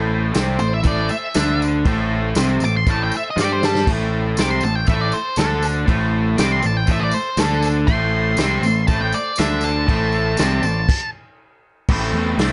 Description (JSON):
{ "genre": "garage rock duo or trio", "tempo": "120 BPM", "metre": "4/4", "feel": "straight", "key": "A minor", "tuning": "A4 = 440 Hz", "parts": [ { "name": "combo organ", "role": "sustained chords", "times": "0.0-12.5 s", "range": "A4 to G5", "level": "-33 LUFS", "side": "equal", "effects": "none" }, { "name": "raw garage guitar", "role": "riff", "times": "0.0-12.5 s", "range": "A2 to G4", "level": "-24 LUFS", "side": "equal", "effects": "overdrive" }, { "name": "growling picked electric bass", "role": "bass", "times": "0.0-12.5 s", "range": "A1 to G2", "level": "-24 LUFS", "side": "equal", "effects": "overdrive" }, { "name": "vintage drum kit", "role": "drums", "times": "0.3-12.5 s", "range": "crash cymbal, hi-hat, kick drum, snare drum, splash cymbal", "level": "-25 LUFS", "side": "equal", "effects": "none" }, { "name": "tambourine", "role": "percussion", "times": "0.3-10.7 s", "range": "none", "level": "-36 LUFS", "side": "equal", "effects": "none" }, { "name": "octave-fuzz lead guitar", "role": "melody", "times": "0.6-11.1 s", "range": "A4 to D6", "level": "-25 LUFS", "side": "equal", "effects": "distortion" } ], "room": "light reverb", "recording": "nothing above 10.6 kHz", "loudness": "-19 LUFS", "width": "mono", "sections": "0.0-11.9 A section", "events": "lead electric guitar solo 0.0-11.9; drum fill 3.4-3.9; stop 10.9-11.9", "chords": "0.0 Am", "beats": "0.35 0.85 1.36 | 1.86 2.37 2.87 3.37 | 3.88 4.38 4.88 5.38 | 5.88 6.38 6.88 7.38 | 7.88 8.38 8.88 9.38 | 9.88 10.38 10.88 11.38 | 11.88 12.37" }